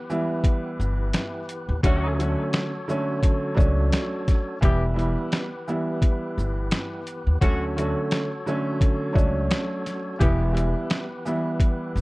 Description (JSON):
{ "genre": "hip hop, boom-bap hip-hop", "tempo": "86 BPM", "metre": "4/4", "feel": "swing 56% on 16ths", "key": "E dorian", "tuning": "A4 = 440 Hz", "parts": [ { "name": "tonewheel organ", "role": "sustained chords", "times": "0.0-12.0 s", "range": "E3 to C#5", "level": "-34 LUFS", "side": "left 1 dB", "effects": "overdrive, fast rotary speaker" }, { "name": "dark upright piano", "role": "accompaniment", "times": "0.1-12.0 s", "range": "D3 to E4", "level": "-26 LUFS", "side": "right 1 dB", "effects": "none" }, { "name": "boom bap sampler-style drum kit", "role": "drums", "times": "0.1-12.0 s", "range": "hi-hat, kick drum, shaker, snare drum", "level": "-22 LUFS", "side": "equal", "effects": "none" }, { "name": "upright bass", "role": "bass", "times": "0.8-12.0 s", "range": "E1 to D#2", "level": "-24 LUFS", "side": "equal", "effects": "none" }, { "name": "dark horn section", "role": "stabs", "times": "1.8-10.4 s", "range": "D3 to G4", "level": "-33 LUFS", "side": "left 2 dB", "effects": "tape echo" } ], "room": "little or no reverb", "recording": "worn, warbling old tape, cassette tape, warbly pitch drift", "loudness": "-22 LUFS", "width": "side -22 dB against mid", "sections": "0.0-12.0 A section", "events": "none", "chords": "0.0 Em; 1.8 Dmaj7; 4.6 Em; 7.4 Dmaj7; 10.2 Em", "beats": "0.44 1.14 | 1.83 2.53 3.23 3.93 | 4.62 5.32 6.02 6.72 | 7.42 8.11 8.81 9.51 | 10.21 10.90 11.60" }